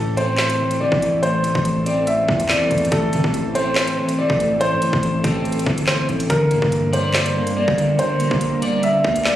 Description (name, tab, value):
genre	hip hop, drill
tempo	142 BPM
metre	4/4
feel	half-time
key	A phrygian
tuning	A4 = 442 Hz
part	dark baby grand piano	melody	0.0-9.4 s	A4 to E5	-20 LUFS	equal	low-pass filter, ping-pong delay
part	electric guitar at the edge of break-up	accompaniment	0.0-9.4 s	A2 to D5	-22 LUFS	left 1 dB	wide subtle chorus, low-pass filter
part	ethereal airy pad	sustained chords	0.6-9.4 s	E3 to Bb4	-26 LUFS	right 1 dB	ensemble chorus, built-in reverb
part	hard-hitting 808-style bass	bass	0.0-9.4 s	G1 to E3	-26 LUFS	equal	none
part	drill drum kit	drums	0.2-9.4 s	handclaps, hi-hat, kick drum, snare drum	-24 LUFS	equal	none
room	digital ambience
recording	recorded on a phone in the room, studio reverb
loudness	-16 LUFS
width	side -12 dB against mid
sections	0.0-9.4 A section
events	none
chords	0.0 Am; 6.3 Gm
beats	0.38 0.81 | 1.23 1.65 2.07 2.50 | 2.92 3.34 3.76 4.19 | 4.61 5.03 5.45 5.88 | 6.30 6.72 7.14 7.57 | 7.99 8.41 8.83 9.26